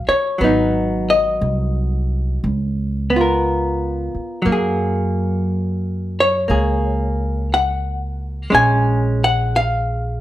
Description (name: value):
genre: jazz ballad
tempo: 59 BPM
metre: 4/4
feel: swing 68% on 8ths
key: F# major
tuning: A4 = 440 Hz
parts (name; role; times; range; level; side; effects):
- archtop guitar, miked and amplified; accompaniment; 0.0-10.2 s; D#3 to G#5; -18 LUFS; equal; none
- upright bass; bass; 0.0-10.2 s; G#1 to F#2; -21 LUFS; equal; none
room: light reverb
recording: none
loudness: -16 LUFS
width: side -14 dB against mid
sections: 0.0-10.2 A section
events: none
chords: 0.4 G#m7; 2.4 C#13; 4.5 F#add9; 8.5 A#m7